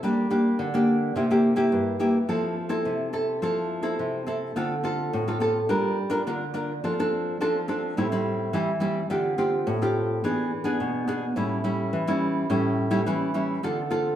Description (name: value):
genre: samba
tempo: 106 BPM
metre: 4/4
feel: straight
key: F major, D minor from 4.6 s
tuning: A4 = 440 Hz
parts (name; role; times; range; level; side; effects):
- nylon-string guitar; solo; 0.0-14.2 s; G2 to Bb4; -23 LUFS; equal; none
room: wet large studio reverb, RT60 1.4 s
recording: band playing live in one room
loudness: -23 LUFS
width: side -11 dB against mid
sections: 0.0-4.6 A section; 4.6-14.2 B section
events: none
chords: 0.0 Gm; 1.1 C7; 2.3 Fmaj7; 4.6 Dm7; 5.7 Gm7; 6.8 Dm7/F; 8.0 Am7; 9.1 Dm7; 10.2 E7; 11.4 A7; 13.6 Dm7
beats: | 0.01 0.58 1.15 1.72 | 2.29 2.86 3.42 3.99 | 4.56 5.13 5.69 6.26 | 6.83 7.39 7.96 8.53 | 9.10 9.66 10.23 10.79 | 11.36 11.93 12.49 13.06 | 13.63